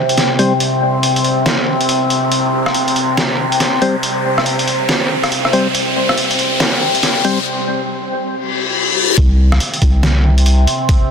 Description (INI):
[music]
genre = deep dubstep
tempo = 140 BPM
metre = 4/4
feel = swing 62% on 16ths, half-time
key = unclear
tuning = A4 = 441 Hz
[part]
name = overtone-sweeping drone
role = sustained chords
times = 0.0-11.1 s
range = C3 to C4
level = -18 LUFS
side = left 1 dB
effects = chorus, built-in reverb
[part]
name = soft dub sub bass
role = bass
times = 0.0-10.7 s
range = G1 to C2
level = -14 LUFS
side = equal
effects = tube saturation, high-pass filter
[part]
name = riser and reverse cymbal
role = sound effects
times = 0.0-9.2 s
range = none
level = -20 LUFS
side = left 2 dB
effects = none
[part]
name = trip hop sampler-style drum kit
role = drums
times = 0.1-11.0 s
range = hi-hat, rim click, snare drum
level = -18 LUFS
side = equal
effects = high-pass filter on hats, high-pass filter on snare
[part]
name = percussive organ stab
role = stabs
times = 0.4-0.5, 3.8-7.4 s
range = G3 to C5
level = -20 LUFS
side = left 2 dB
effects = chorus, dub echo
[part]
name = electronic kick drum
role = drums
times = 9.2-11.0 s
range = none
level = -13 LUFS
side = equal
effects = none
[sound]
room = moderate huge ambient reverb, RT60 8.6 s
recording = dense, heavily limited modern master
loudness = -12 LUFS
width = side -6 dB against mid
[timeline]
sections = 0.0-9.2 A section; 9.2-11.1 B section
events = build-up 0.0-9.2; riser 0.0-7.5; break 7.5-9.2; reverse cymbal 8.4-9.2; drop 9.2-11.1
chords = 0.0 C5